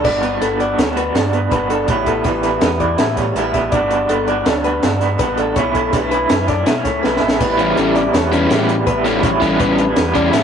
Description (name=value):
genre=math rock and midwest emo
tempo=163 BPM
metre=5/4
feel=straight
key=G lydian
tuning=A4 = 442 Hz
part: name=electric guitar through a small old amp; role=accompaniment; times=0.0-10.4 s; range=D2 to F#4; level=-17 LUFS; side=right 3 dB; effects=tremolo
part: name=direct-recorded clean electric guitar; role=arpeggios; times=0.0-10.4 s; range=G4 to E5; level=-21 LUFS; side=left 5 dB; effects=none
part: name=sub bass with octave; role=bass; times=0.0-10.4 s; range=G1 to B2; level=-25 LUFS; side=left 1 dB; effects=none
part: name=compact cocktail drum kit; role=drums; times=0.0-10.4 s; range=crash cymbal, hi-hat, kick drum, snare drum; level=-20 LUFS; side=equal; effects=none
part: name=crunchy overdriven guitar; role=riff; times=7.6-10.4 s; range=E3 to E4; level=-16 LUFS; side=left 2 dB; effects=none
room=light reverb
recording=rough rehearsal-room recording, nothing above 10.9 kHz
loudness=-14 LUFS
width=side -7 dB against mid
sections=0.0-10.4 A section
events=drum fill 7.0-7.4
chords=0.0 Gmaj9; 1.9 A9; 3.7 Gmaj9; 5.6 Bm11; 7.4 A9